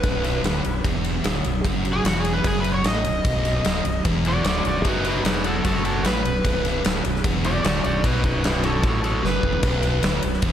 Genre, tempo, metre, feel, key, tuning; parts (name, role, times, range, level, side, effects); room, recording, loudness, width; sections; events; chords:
blues rock power trio and southern rock; 150 BPM; 4/4; straight; A4 = 440 Hz
overdriven slide guitar; melody; 0.0-10.4 s; D#4 to D#5; -25 LUFS; equal
thick fuzz guitar; riff; 0.0-10.5 s; B1 to B2; -26 LUFS; equal; distortion
growling fingered electric bass; bass; 0.0-10.5 s; B0 to B1; -26 LUFS; equal; overdrive
huge arena drum kit; drums; 0.0-10.5 s; crash cymbal, kick drum, ride cymbal, snare drum, toms; -24 LUFS; equal
light reverb; -19 LUFS; side -10 dB against mid
0.0-10.5 A section
electric slide guitar solo 0.0-10.5; drum fill 9.2-9.6
0.0 B